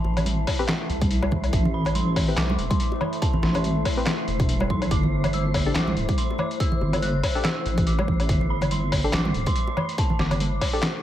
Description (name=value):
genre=deep dubstep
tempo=142 BPM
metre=4/4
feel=swing 56% on 16ths, half-time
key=unclear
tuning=A4 = 439 Hz
part: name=dark detuned synth bell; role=melody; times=0.0-11.0 s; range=A5 to F#6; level=-34 LUFS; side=right 1 dB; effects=chorus, phaser, vintage 12-bit sampler grit, dub echo
part: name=deep dark ambient pad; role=sustained chords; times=0.0-11.0 s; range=A3 to E4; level=-33 LUFS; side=equal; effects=chorus, built-in reverb
part: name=bongos and congas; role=percussion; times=0.0-10.5 s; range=none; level=-30 LUFS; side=right 2 dB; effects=none
part: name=wind-like tuned noise texture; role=texture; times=0.0-11.0 s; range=C5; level=-35 LUFS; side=left 1 dB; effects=built-in reverb
part: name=deep soft wobble bass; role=bass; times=0.1-10.6 s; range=D1 to C2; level=-24 LUFS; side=equal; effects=chorus, tube saturation
part: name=trip hop sampler-style drum kit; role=drums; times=0.2-10.9 s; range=handclaps, hi-hat, snare drum, woodblock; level=-28 LUFS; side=left 2 dB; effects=none
part: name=electronic kick drum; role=drums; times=0.5-10.7 s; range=none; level=-25 LUFS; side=equal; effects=none
part: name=filtered dub chord stab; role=stabs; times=0.6-10.8 s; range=C4 to B4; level=-33 LUFS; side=left 2 dB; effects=chorus, dub echo
room=light reverb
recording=vinyl crackle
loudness=-21 LUFS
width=side -12 dB against mid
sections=0.0-11.0 A section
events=none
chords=0.0 Am7; 4.9 Gsus2